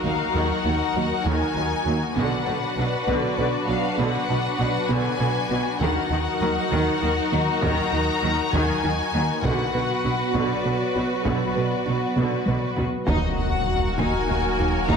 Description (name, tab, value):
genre	cinematic, hybrid orchestral and electronic film score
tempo	66 BPM (dotted quarters)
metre	6/8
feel	straight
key	Eb harmonic minor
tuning	A4 = 440 Hz
part	warm symphonic violin section	melody	0.0-15.0 s	D5 to Bb5	-30 LUFS	left 6 dB	none
part	rich symphonic violin section	second line	0.0-15.0 s	Bb3 to B4	-28 LUFS	left 3 dB	none
part	rich symphonic viola section	accompaniment	0.0-15.0 s	D3 to Bb4	-29 LUFS	right 2 dB	none
part	phased analog pad	sustained chords	0.0-15.0 s	Gb3 to B4	-29 LUFS	equal	phaser, chorus
part	round analog bass	riff	0.0-15.0 s	Eb2 to B3	-29 LUFS	right 2 dB	none
part	rich chamber double bass section	bass	0.0-15.0 s	B1 to Eb2	-32 LUFS	right 3 dB	none
part	rich symphonic cello section	bass	0.0-15.0 s	Eb2 to Eb3	-31 LUFS	right 2 dB	none
part	impact	sound effects	0.0-0.4, 13.1-14.9 s	none	-32 LUFS	equal	none
part	soft round pluck	arpeggios	0.1-15.0 s	Eb3 to B4	-33 LUFS	right 3 dB	none
part	taiko ensemble	drums	2.2-15.0 s	none	-30 LUFS	equal	none
part	clear French horn section	sustained chords	13.1-15.0 s	Bb3 to Gb4	-31 LUFS	left 4 dB	none
part	punchy sub bass	bass	13.1-15.0 s	Eb1	-31 LUFS	equal	none
room	moderate scoring stage reverb, RT60 1.7 s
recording	none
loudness	-21 LUFS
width	side -6 dB against mid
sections	0.0-13.1 A section; 13.1-15.0 B section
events	impact 0.0-0.4, 13.1-14.9; drum fill 12.2-13.1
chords	0.0 Ebm; 2.2 Bm; 5.8 Ebm; 9.4 Bm; 13.1 Ebm